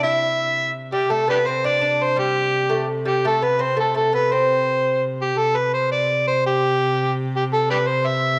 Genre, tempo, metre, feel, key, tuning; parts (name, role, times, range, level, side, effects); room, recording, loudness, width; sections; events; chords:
medieval dance; 112 BPM (dotted quarters); 6/8; straight; C major; A4 = 440 Hz
overdriven harmonica; melody; 0.0-8.4 s; D4 to E5; -21 LUFS; equal
lute; second line; 0.0-5.0 s; G3 to E4; -29 LUFS; equal
dark viola da gamba; drone; 0.0-8.4 s; C3; -30 LUFS; equal
wet spring reverb, RT60 1.7 s, small room ambience; -20 LUFS; mono
0.0-5.4 A section; 5.4-8.4 A section